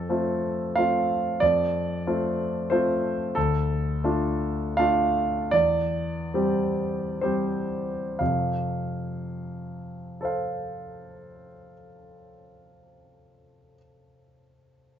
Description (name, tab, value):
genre	neoclassical minimalist piano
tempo	59-94 BPM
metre	3/4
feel	rubato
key	F major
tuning	A4 = 440 Hz
part	clear concert grand piano	solo	0.0-15.0 s	D2 to F5	-24 LUFS	equal	none
room	moderate large studio reverb, RT60 1.1 s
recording	band playing live in one room, nothing above 7.6 kHz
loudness	-23 LUFS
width	side -9 dB against mid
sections	0.0-8.2 A section; 8.2-14.2 B section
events	slowing down 2.4-8.2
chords	0.0 F; 3.4 Dm; 5.5 C/E; 8.2 F